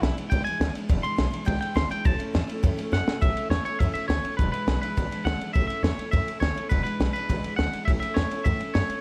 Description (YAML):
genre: rockabilly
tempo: 206 BPM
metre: 4/4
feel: straight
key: A major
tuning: A4 = 441 Hz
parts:
  - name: twangy electric guitar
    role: melody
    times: 0.0-9.0 s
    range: E4 to C6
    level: -33 LUFS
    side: equal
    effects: tape echo
  - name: picked steel-string acoustic guitar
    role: accompaniment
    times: 0.0-9.0 s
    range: E2 to E4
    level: -36 LUFS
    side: equal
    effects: none
  - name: upright bass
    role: bass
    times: 0.0-8.9 s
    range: E1 to F#2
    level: -30 LUFS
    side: equal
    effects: none
  - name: compact cocktail drum kit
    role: drums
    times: 0.0-9.0 s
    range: kick drum, ride cymbal, snare drum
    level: -29 LUFS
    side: equal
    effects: none
room: light reverb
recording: vinyl crackle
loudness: -26 LUFS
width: mono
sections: 0.0-3.2 A section; 3.2-9.0 B section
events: clean electric guitar solo 0.0-3.2; drum fill 2.9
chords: 0.0 E7; 2.1 A; 4.4 E7; 5.5 A; 6.7 E7; 7.9 A